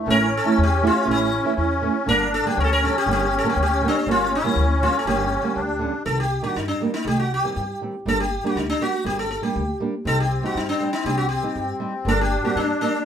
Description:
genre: klezmer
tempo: 120 BPM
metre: 2/4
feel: straight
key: G dorian sharp4, C dorian sharp4 from 6.1 s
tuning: A4 = 440 Hz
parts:
  - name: sitar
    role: melody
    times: 0.0-13.0 s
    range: D4 to Bb4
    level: -24 LUFS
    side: left 1 dB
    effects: none
  - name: musette accordion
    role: second line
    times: 0.0-6.0, 10.1-13.1 s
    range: A3 to D4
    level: -24 LUFS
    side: left 1 dB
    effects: none
  - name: nylon-string guitar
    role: accompaniment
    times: 0.1-12.9 s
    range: D3 to E4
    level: -25 LUFS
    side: right 4 dB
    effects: none
  - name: upright bass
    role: bass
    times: 0.1-12.7 s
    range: G1 to G2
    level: -26 LUFS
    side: left 1 dB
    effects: none
room: wet studio ambience, RT60 0.5 s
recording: minimal, uncompressed stereo recording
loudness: -19 LUFS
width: side -8 dB against mid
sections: 0.0-6.1 A section; 6.1-13.1 B section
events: none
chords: 0.0 A; 2.1 Gm; 6.1 Cm; 8.1 Gm; 10.1 Cm; 12.1 Gm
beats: | 0.08 0.58 | 1.08 1.58 | 2.08 2.57 | 3.07 3.57 | 4.07 4.57 | 5.07 5.56 | 6.06 6.56 | 7.06 7.56 | 8.06 8.56 | 9.06 9.56 | 10.06 10.56 | 11.06 11.56 | 12.06 12.56

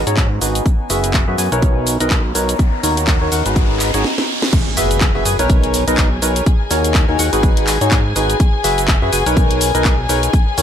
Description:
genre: piano house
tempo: 124 BPM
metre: 4/4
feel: swing 57% on 16ths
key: F# mixolydian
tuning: A4 = 439 Hz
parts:
  - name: percussive organ stab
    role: riff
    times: 0.0-10.6 s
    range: D#4 to G#5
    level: -19 LUFS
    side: equal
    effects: wide subtle chorus, sidechain pumping, ping-pong delay
  - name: fat analog bass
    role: bass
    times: 0.0-10.6 s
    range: F#1 to G#2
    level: -20 LUFS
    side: equal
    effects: sidechain pumping
  - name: warbly tape-like pad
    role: texture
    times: 0.0-4.0 s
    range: B3 to A#5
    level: -26 LUFS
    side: equal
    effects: chorus, built-in reverb, phaser, sidechain pumping
  - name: house drum kit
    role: drums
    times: 0.1-10.6 s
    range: cabasa, crash cymbal, handclaps, hi-hat, snare drum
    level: -20 LUFS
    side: equal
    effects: none
  - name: electronic kick drum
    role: drums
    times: 0.2-10.4 s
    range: none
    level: -14 LUFS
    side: equal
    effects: none
  - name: riser and impact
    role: sound effects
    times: 1.9-6.5 s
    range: none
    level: -25 LUFS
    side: equal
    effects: none
  - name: dark studio string section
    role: sustained chords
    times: 4.5-10.6 s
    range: G#4 to G#5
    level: -23 LUFS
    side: left 4 dB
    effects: sidechain pumping
room: little or no reverb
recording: none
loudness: -13 LUFS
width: side -9 dB against mid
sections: 0.0-4.5 A section; 4.5-10.6 B section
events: riser 1.9-4.5; drum fill 4.0-4.5; band accent 4.4; drop 4.5-10.6; impact 4.5-6.5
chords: 0.0 G#m7; 0.7 F#9sus4; 1.6 Bmaj9; 2.6 G#m7; 4.5 F#9sus4; 5.5 Bmaj9; 6.5 D#m7; 7.4 G#m7; 8.4 F#9sus4; 9.4 Bmaj9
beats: 0.17 | 0.66 1.14 1.62 2.11 | 2.59 3.08 3.56 4.04 | 4.53 5.01 5.50 5.98 | 6.46 6.95 7.43 7.92 | 8.40 8.88 9.37 9.85 | 10.34

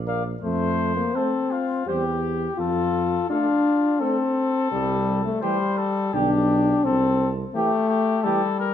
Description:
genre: classical, brass quintet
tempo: 85 BPM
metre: 3/4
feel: straight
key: F major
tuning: A4 = 441 Hz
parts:
  - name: mellow tuba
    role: bass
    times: 0.0-7.4 s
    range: Bb1 to F2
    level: -27 LUFS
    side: right 4 dB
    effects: none
  - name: mellow trumpet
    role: melody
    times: 0.1-8.7 s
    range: F4 to F5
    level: -28 LUFS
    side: left 5 dB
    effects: none
  - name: mellow flugelhorn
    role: second line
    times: 0.1-8.4 s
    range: G4 to D5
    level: -30 LUFS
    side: right 6 dB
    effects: none
  - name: warm French horn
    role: accompaniment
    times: 0.1-8.7 s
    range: G3 to Bb4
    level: -22 LUFS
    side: left 3 dB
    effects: none
  - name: mellow trombone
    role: accompaniment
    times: 1.1-8.4 s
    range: D3 to A3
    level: -36 LUFS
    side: right 3 dB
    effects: none
room: wet recital hall reverb, RT60 1.4 s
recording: none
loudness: -20 LUFS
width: side -9 dB against mid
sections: 0.4-8.7 A section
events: none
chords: 0.4 F; 1.9 C/E; 2.6 F; 4.7 C5; 6.1 G/B; 6.9 C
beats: | 0.43 1.15 1.87 | 2.58 3.29 4.00 | 4.71 5.42 6.14 | 6.85 7.55 8.25

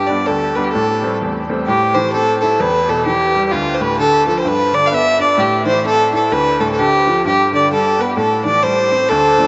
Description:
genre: celtic folk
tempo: 129 BPM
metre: 2/4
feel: swing 60% on 8ths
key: A minor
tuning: A4 = 436 Hz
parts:
  - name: warm fiddle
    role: melody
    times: 0.0-9.5 s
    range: F4 to F5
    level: -16 LUFS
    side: equal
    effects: none
  - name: bright upright piano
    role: accompaniment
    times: 0.0-9.5 s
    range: D2 to E4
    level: -22 LUFS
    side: equal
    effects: none
room: wet huge ambient reverb, RT60 8.4 s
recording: in a vast, echoing space, nothing above 7.8 kHz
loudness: -15 LUFS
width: mono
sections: 0.0-1.7 A section; 1.7-9.1 A section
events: none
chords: 0.0 G; 0.7 Am7; 1.7 Am; 2.6 Em; 3.5 Dm; 4.5 G; 5.4 Am; 6.3 Dm; 7.3 G; 8.2 Am7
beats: 0.27 | 0.74 1.20 | 1.67 2.13 | 2.60 3.07 | 3.53 4.00 | 4.46 4.93 | 5.39 5.86 | 6.32 6.79 | 7.25 7.72 | 8.18 8.64 | 9.11

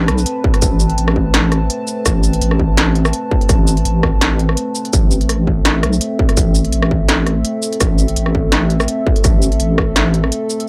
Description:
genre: half-time drum and bass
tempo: 167 BPM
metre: 4/4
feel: swing 55% on 16ths, half-time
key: A minor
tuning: A4 = 440 Hz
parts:
  - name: dark analog pad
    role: sustained chords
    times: 0.0-10.7 s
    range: A3 to A5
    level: -24 LUFS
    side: equal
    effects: chorus, phaser, sidechain pumping
  - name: deep soft wobble bass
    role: bass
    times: 0.0-10.3 s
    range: A1 to B1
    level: -18 LUFS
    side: equal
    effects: chorus
  - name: industrial drum kit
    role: drums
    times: 0.1-10.7 s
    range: hi-hat, rim click, shaker, snare drum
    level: -20 LUFS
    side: equal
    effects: none
  - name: electronic kick drum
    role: drums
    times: 0.4-9.9 s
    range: none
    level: -18 LUFS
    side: equal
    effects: distortion
room: little or no reverb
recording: dry, gritty hardware recording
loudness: -15 LUFS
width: mono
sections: 0.0-10.7 A section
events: break 4.6-4.9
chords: 0.0 Amadd9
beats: 0.26 | 0.62 0.98 1.34 1.70 | 2.06 2.42 2.78 3.14 | 3.50 3.86 4.21 4.57 | 4.93 5.29 5.65 6.01 | 6.37 6.73 7.09 7.45 | 7.81 8.17 8.53 8.88 | 9.24 9.60 9.96 10.32 | 10.68

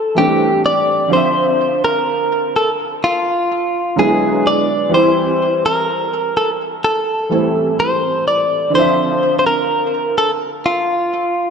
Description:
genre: R&B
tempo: 63 BPM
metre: 4/4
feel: straight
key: D minor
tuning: A4 = 440 Hz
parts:
  - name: direct-recorded clean electric guitar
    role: melody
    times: 0.0-11.5 s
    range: F4 to D5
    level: -15 LUFS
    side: left 1 dB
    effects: tape echo
  - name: warm baby grand piano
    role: accompaniment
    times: 0.0-11.5 s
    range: D3 to E5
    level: -18 LUFS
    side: right 3 dB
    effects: ensemble chorus
room: wet plate reverb, RT60 2.7 s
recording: dreamy mix soaked in reverb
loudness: -13 LUFS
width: side -6 dB against mid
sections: 0.0-11.5 A section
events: none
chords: 0.0 Am7; 1.1 Dm7; 4.0 E7; 4.9 Am7; 8.7 Dm7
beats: 0.17 | 1.12 2.07 3.02 3.98 | 4.93 5.88 6.83 7.79 | 8.74 9.69 10.64

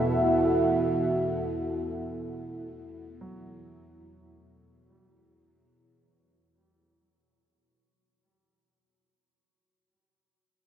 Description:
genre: dark ambient drone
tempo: free time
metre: none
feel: none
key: unclear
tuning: A4 = 442 Hz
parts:
  - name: deep dark ambient pad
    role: sustained chords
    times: 0.0-5.4 s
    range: E4 to F#5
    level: -28 LUFS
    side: right 1 dB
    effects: chorus, built-in reverb
  - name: dark grand piano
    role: arpeggios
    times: 0.0-9.9 s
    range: B2 to F#3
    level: -40 LUFS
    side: right 2 dB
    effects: diffuse ambient delay
  - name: overtone-sweeping drone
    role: drone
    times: 0.0-5.5 s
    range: E2 to B2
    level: -31 LUFS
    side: right 1 dB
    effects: chorus, built-in reverb, phaser
  - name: bronze singing bowl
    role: texture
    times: 0.0-5.4 s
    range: none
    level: barely audible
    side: none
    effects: none
room: wet huge ambient reverb, RT60 7.8 s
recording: none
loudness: -25 LUFS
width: side -9 dB against mid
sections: 0.0-5.4 A section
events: fade-out 0.0-5.4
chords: 0.0 Esus2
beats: free time

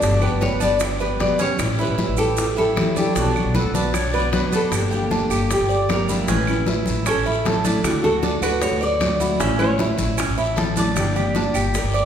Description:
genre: latin, Cuban son and guajira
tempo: 154 BPM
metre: 4/4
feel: straight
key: unclear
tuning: A4 = 440 Hz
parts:
  - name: nylon-string guitar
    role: melody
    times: 0.0-12.1 s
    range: F#4 to E5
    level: -23 LUFS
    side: equal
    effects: none
  - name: picked steel-string acoustic guitar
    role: accompaniment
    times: 0.0-11.8 s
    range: B2 to G4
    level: -25 LUFS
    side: left 2 dB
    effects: none
  - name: Cuban tres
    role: arpeggios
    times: 0.0-12.1 s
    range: C#4 to D5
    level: -25 LUFS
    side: right 3 dB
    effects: none
  - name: upright bass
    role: bass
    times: 0.0-12.1 s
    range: G1 to D2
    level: -25 LUFS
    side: equal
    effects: none
  - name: bongos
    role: percussion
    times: 0.0-11.9 s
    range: none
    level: -30 LUFS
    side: left 3 dB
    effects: none
  - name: congas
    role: percussion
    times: 0.0-12.1 s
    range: none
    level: -28 LUFS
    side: equal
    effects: none
  - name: guiro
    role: percussion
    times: 0.0-12.1 s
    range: none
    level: -35 LUFS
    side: left 4 dB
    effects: none
  - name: maracas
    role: percussion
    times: 0.0-12.1 s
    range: none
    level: -34 LUFS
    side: right 6 dB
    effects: none
  - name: claves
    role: percussion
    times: 0.2-11.7 s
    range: none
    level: -36 LUFS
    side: right 5 dB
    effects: none
  - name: bright silver concert flute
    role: second line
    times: 3.6-4.7 s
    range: A4 to D5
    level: -28 LUFS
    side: left 3 dB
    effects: none
room: wet scoring stage reverb, RT60 1.7 s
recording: recorded in a church or concert hall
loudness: -18 LUFS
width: side -8 dB against mid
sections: 0.0-4.7 A section; 4.7-12.1 B section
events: none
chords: 0.0 G; 1.6 A7; 3.2 Bm; 4.7 Gm; 6.3 A; 7.8 D; 9.4 A; 11.0 Gm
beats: | 0.03 0.42 0.81 1.20 | 1.59 1.99 2.38 2.77 | 3.16 3.55 3.94 4.33 | 4.72 5.11 5.50 5.89 | 6.28 6.67 7.06 7.45 | 7.84 8.23 8.62 9.02 | 9.40 9.79 10.19 10.58 | 10.97 11.36 11.75

